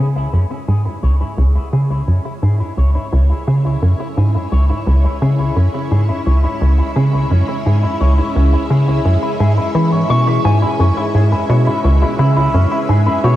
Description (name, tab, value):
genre	ambient, sequencer-driven space music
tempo	86 BPM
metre	4/4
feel	straight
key	C# minor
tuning	A4 = 440 Hz
part	string machine, full ensemble	sustained chords	0.0-13.4 s	G#3 to E5	-23 LUFS	equal	phaser, ensemble chorus, cassette tape
part	electric guitar with an envelope filter	arpeggios	0.0-13.4 s	C#4 to C#6	-23 LUFS	left 1 dB	auto-pan, cassette tape, tape echo
part	tight sequencer bass	riff	0.0-13.4 s	C#2 to E3	-13 LUFS	equal	analog chorus, cassette tape, tape echo
room	moderate lush hall reverb, RT60 2.7 s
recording	home recording on cassette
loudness	-13 LUFS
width	side -14 dB against mid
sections	0.0-13.4 A section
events	fade-in on clean electric guitar 0.0-13.4; fade-in on string machine 0.0-13.4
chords	0.0 C#m